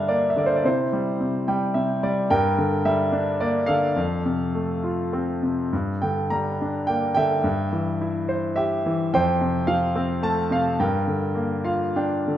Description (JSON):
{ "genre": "classical, lyrical solo piano", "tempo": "96-113 BPM", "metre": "3/4", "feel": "rubato", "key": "G dorian", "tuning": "A4 = 440 Hz", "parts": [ { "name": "bright concert grand piano", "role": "solo", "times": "0.0-12.4 s", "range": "F2 to Bb5", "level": "-21 LUFS", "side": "equal", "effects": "none" } ], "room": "light reverb", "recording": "minimal, uncompressed stereo recording", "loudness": "-21 LUFS", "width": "side -11 dB against mid", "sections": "0.0-12.4 A section", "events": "grand piano fill 1.2-2.3, 11.4-12.4", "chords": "0.0 Gm; 0.7 C; 2.3 Gm; 4.0 F; 5.7 Gm; 7.4 C/G; 9.1 F; 10.8 Gm7" }